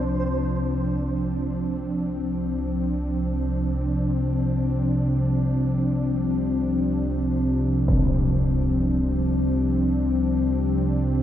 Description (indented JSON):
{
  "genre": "dark ambient drone",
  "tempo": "free time",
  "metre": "none",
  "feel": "none",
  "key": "unclear",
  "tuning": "A4 = 440 Hz",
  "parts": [
    { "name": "sweeping resonant pad", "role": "sustained chords", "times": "0.0-11.2 s", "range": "F3 to D4", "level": "-26 LUFS", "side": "equal", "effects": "chorus" },
    { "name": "analog drone", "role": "drone", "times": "0.0-11.2 s", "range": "C2 to C3", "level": "-23 LUFS", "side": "left 1 dB", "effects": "chorus" },
    { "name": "impact", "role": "percussion", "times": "7.9-8.1 s", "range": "none", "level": "-26 LUFS", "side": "equal", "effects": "low-pass filter on sfx" }
  ],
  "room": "moderate spring reverb, RT60 2.4 s",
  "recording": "none",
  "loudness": "-21 LUFS",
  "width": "side -11 dB against mid",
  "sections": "0.1-11.2 A section",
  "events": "none",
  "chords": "0.1 Csus2"
}